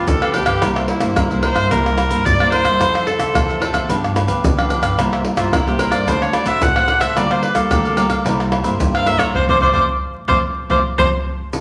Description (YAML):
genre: samba and choro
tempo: 110 BPM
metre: 4/4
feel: straight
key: F major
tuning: A4 = 440 Hz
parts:
  - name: clear viola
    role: melody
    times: 0.0-11.1 s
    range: E4 to F#5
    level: -22 LUFS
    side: equal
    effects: none
  - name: cavaquinho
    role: accompaniment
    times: 0.0-11.1 s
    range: D4 to F#5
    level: -25 LUFS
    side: equal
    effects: none
  - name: nylon-string guitar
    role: accompaniment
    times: 0.0-11.6 s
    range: G2 to A4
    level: -26 LUFS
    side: equal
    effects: none
  - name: upright bass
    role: bass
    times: 0.0-11.1 s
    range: A1 to G2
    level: -28 LUFS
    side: equal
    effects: none
  - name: egg shaker, surdo, pandeiro, agogo bells and tamborim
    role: percussion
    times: 0.1-11.6 s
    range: none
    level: -21 LUFS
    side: equal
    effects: none
room: wet large studio reverb, RT60 1.3 s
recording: vinyl crackle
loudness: -17 LUFS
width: mono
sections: 0.0-11.5 A section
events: viola solo 0.0-11.5; band accent 9.3-11.5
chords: 0.0 G7; 0.6 C7; 2.8 Fmaj7; 3.9 G7; 5.0 C7; 6.1 D7; 7.2 Gm7/D; 8.3 C7; 9.3 F6